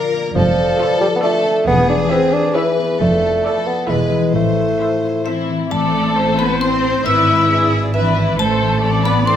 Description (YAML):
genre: cinematic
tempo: 135 BPM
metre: 3/4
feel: straight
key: A minor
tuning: A4 = 440 Hz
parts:
  - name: rich chamber violin section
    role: melody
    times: 0.0-9.4 s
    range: G#4 to E5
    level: -26 LUFS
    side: left 4 dB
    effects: none
  - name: warm chamber violin section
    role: second line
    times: 0.0-9.4 s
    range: E4 to F5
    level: -26 LUFS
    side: left 4 dB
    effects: none
  - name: rich studio viola section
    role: accompaniment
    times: 0.0-9.4 s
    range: E4 to D5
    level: -25 LUFS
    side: right 2 dB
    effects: none
  - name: warm French horn section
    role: sustained chords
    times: 0.0-9.4 s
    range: C4 to D5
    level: -23 LUFS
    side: left 3 dB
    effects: none
  - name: concert harp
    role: arpeggios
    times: 0.0-9.4 s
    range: G#2 to B4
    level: -22 LUFS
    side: left 6 dB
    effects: none
  - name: warm chamber cello section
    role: bass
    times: 0.3-9.4 s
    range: E2 to E4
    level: -22 LUFS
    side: right 2 dB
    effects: none
  - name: warm bassoon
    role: accompaniment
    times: 0.4-5.2 s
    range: E3 to D4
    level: -17 LUFS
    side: right 2 dB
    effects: none
  - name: warm chamber double bass section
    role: bass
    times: 0.4-9.4 s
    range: E1 to A1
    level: -21 LUFS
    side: right 3 dB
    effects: none
  - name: xylophone with wooden mallets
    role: melody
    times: 5.3-9.4 s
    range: E5 to E6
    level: -26 LUFS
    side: left 2 dB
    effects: none
  - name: mellow hollow concert flute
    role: second line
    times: 5.3-9.4 s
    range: E5 to E6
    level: -20 LUFS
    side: left 1 dB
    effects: none
room: wet recital hall reverb, RT60 1.4 s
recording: none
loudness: -13 LUFS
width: side -10 dB against mid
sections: 0.0-5.7 A section; 5.7-9.4 B section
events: none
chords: 0.3 Dm/F; 1.7 E; 3.0 Dm/F; 3.9 E; 4.3 Am; 7.1 E7/G#; 8.4 Am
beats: | 0.35 0.79 1.23 | 1.67 2.11 2.55 | 3.00 3.45 3.89 | 4.35 4.81 5.26 | 5.72 6.17 6.61 | 7.06 7.50 7.94 | 8.39 8.83 9.27